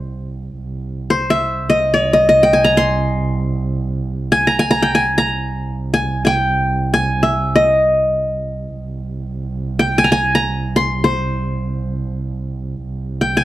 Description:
Arabic maqam ensemble; free time; C maqam saba; A4 = 440 Hz
qanun; melody; 0.0-13.4 s; C5 to C6; -14 LUFS; left 1 dB
warm double bass; drone; 0.0-13.4 s; C2; -22 LUFS; right 2 dB
light reverb; dark, warm production; -15 LUFS; side -15 dB against mid
0.0-12.8 A section
free time

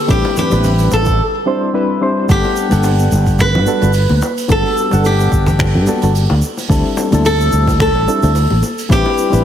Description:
sunset chillout; 109 BPM; 4/4; swing 55% on 16ths; G major; A4 = 441 Hz
flamenco guitar; melody; 0.0-9.4 s; G4 to B4; -17 LUFS; left 1 dB; tape echo
lush unison pad; sustained chords; 0.0-1.2 s; D3 to B4; -27 LUFS; left 2 dB; chorus, phaser
soft electric-piano-like synth keys; accompaniment; 0.1-9.4 s; G3 to F#5; -18 LUFS; equal; chorus, tremolo, auto-pan, low-pass filter, tape echo
fretless electric bass; bass; 0.1-9.4 s; G1 to G2; -14 LUFS; equal
electronic kick drum; drums; 0.1-9.0 s; -17 LUFS; equal; overdrive
jazz brush drum kit; drums; 0.1-9.4 s; finger snaps, hi-hat, shaker; -26 LUFS; right 3 dB
bongos and congas; percussion; 0.2-9.4 s; -24 LUFS; left 3 dB
moderate recital hall reverb, RT60 1.5 s, small room ambience; heavily compressed radio sound, multiband compression; -11 LUFS; side -10 dB against mid
0.0-2.3 A section; 2.3-9.4 A section
break 1.2-2.3
0.1 Am11; 1.2 D7sus4; 2.3 Gmaj9; 6.7 D7sus4; 8.9 Am11
| 0.09 0.65 1.20 1.75 | 2.30 2.85 3.40 3.95 | 4.50 5.05 5.60 6.15 | 6.70 7.25 7.80 8.35 | 8.90

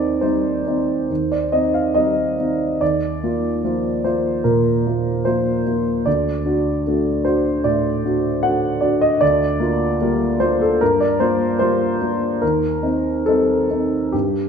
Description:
neoclassical minimalist piano; 75 BPM; 4/4; uneven beats, rubato; A4 = 440 Hz
dark baby grand piano; solo; 0.0-14.5 s; D2 to F#5; -16 LUFS; equal
wet stone room reverb, RT60 1.3 s; band playing live in one room; -16 LUFS; side -6 dB against mid
0.0-14.5 A section
0.0 Cm/Eb; 2.8 Ebsus2; 6.1 D; 9.2 Gm7/D; 12.4 Cm/Eb
0.22 1.09 1.96 | 2.81 3.64 4.45 5.26 | 6.06 6.86 7.64 8.44 | 9.21 10.01 10.81 11.61 | 12.42 13.25 14.13

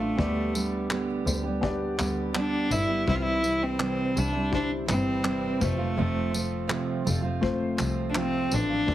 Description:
acoustic pop; 83 BPM; 4/4; straight; A4 = 440 Hz
dark cello; melody; 0.0-8.9 s; A3 to F4; -28 LUFS; equal; plate reverb
felt-muted upright piano; accompaniment; 0.0-8.9 s; G3 to D5; -33 LUFS; left 4 dB
fingerpicked steel-string acoustic guitar; accompaniment; 0.0-8.9 s; F2 to G4; -30 LUFS; right 4 dB
rich double bass; bass; 0.0-8.9 s; F1 to D2; -32 LUFS; left 1 dB
vintage brush drum kit; drums; 0.2-8.9 s; handclaps, kick drum, tambourine; -32 LUFS; equal
light reverb; heavily compressed radio sound, multiband compression; -24 LUFS; side -13 dB against mid
0.0-8.9 A section
0.2 G/D; 3.1 C; 5.6 F
| 0.18 0.91 1.63 2.36 | 3.08 3.81 4.53 5.25 | 5.98 6.71 7.43 8.16 | 8.88

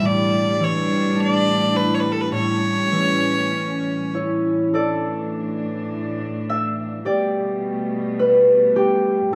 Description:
celtic folk, Celtic slow air; 48-54 BPM; 4/4; rubato; A4 = 441 Hz
clear fiddle; melody; 0.0-4.1 s; A4 to D5; -24 LUFS; equal; slapback echo
concert harp; accompaniment; 0.0-9.3 s; A2 to E5; -23 LUFS; equal; slapback echo
dark studio string section; sustained chords; 0.0-9.3 s; A2 to D4; -27 LUFS; equal
light reverb; recorded outdoors, with no room sound; -20 LUFS; mono
0.0-4.7 A section; 4.7-9.3 B section
harp solo 4.7-9.3
0.0 A7sus4; 2.3 A7; 4.7 Asus4; 7.1 Gadd9/B
| 0.03 1.16 2.31 3.52 | 4.74 5.92 7.07 8.21 | 9.34

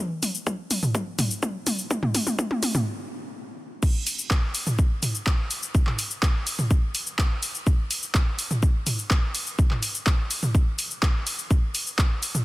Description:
techno; 125 BPM; 4/4; straight
punchy analog drum machine; drums; 0.2-12.4 s; crash cymbal, handclaps, hi-hat, shaker, toms; -26 LUFS; equal; overdrive, small room ambience
electronic kick drum; drums; 0.5-12.1 s; -22 LUFS; equal; high-pass filter on kick, small room ambience
little or no reverb; dense, heavily limited modern master; -22 LUFS; side -19 dB against mid
0.0-3.8 A section; 3.8-12.4 B section
build-up 0.0-3.8; drum fill 0.0-2.9; stop 2.9-3.8; drop 3.8-12.4
0.47 0.95 1.43 | 1.91 2.39 2.87 3.35 | 3.83 4.31 4.79 5.27 | 5.75 6.23 6.71 7.19 | 7.67 8.15 8.63 9.11 | 9.59 10.07 10.55 11.03 | 11.51 11.99

